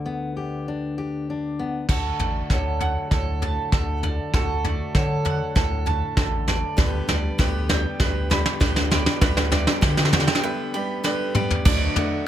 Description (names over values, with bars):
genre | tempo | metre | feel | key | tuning
indie folk with a building arrangement | 98 BPM | 4/4 | straight | D major | A4 = 442 Hz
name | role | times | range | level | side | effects
fingerpicked steel-string acoustic guitar | accompaniment | 0.0-9.2 s | D2 to G4 | -30 LUFS | left 3 dB | none
bowl-back mandolin | arpeggios | 1.9-12.3 s | A4 to B5 | -28 LUFS | right 6 dB | plate reverb, analog delay
saturated sub bass | bass | 1.9-11.9 s | A1 to D3 | -25 LUFS | equal | none
soft brush drum kit | drums | 1.9-12.1 s | crash cymbal, kick drum, snare drum, toms | -22 LUFS | equal | none
dark upright piano | accompaniment | 6.8-12.3 s | D2 to E5 | -33 LUFS | right 4 dB | plate reverb
picked steel-string acoustic guitar | accompaniment | 6.8-12.3 s | D3 to G4 | -30 LUFS | left 5 dB | plate reverb
room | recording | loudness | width
light reverb | none | -20 LUFS | side -11 dB against mid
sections
0.0-1.9 A section; 1.9-11.7 B section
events
build-up 1.9-11.7; drum fill 1.9-10.4, 11.0-11.7; break 10.4-11.7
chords
0.0 G/D; 1.9 D; 6.8 G/D; 11.7 D